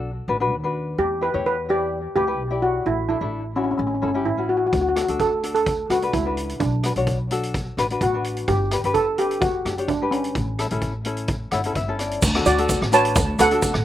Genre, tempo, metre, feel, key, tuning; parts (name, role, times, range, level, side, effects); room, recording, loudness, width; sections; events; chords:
calypso; 128 BPM; 4/4; straight; D major; A4 = 438 Hz
tenor ukulele; accompaniment; 0.0-13.7 s; C#4 to F#5; -26 LUFS; left 4 dB; slapback echo
upright bass; bass; 0.0-13.8 s; F#1 to E2; -27 LUFS; equal
steel pan; melody; 1.0-13.8 s; C#4 to A5; -21 LUFS; right 1 dB; slapback echo
street-band drum kit; drums; 4.7-13.8 s; crash cymbal, hi-hat, kick drum, rim click; -27 LUFS; equal
tube shaker; percussion; 12.2-13.7 s; -30 LUFS; right 4 dB
little or no reverb; recorded outdoors, with no room sound; -20 LUFS; side -12 dB against mid
0.0-12.2 A section; 12.2-13.8 B section
ukulele fill 11.3-12.2
0.0 Bm7; 1.0 Em7; 2.9 Asus4; 3.8 A7; 4.7 Dmaj7; 6.6 Bm7; 8.5 Gmaj7; 10.4 A7; 12.2 Dmaj7